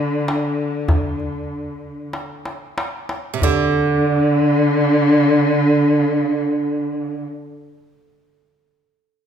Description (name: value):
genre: Arabic maqam ensemble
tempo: 90-101 BPM (eighths)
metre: 10/8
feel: straight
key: unclear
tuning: A4 = 440 Hz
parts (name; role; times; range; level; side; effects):
- warm cello; melody; 0.0-7.2 s; D3; -18 LUFS; left 3 dB; none
- oud; second line; 0.0-7.2 s; C3 to D3; -20 LUFS; right 6 dB; none
- darbuka; percussion; 0.3-4.0 s; none; -23 LUFS; equal; none
room: moderate recital hall reverb, RT60 1.5 s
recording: minimal, uncompressed stereo recording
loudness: -16 LUFS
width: side -8 dB against mid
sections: 0.0-3.4 A section; 3.4-9.3 B section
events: slowing down 0.0-3.4; drum fill 2.1-3.4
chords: none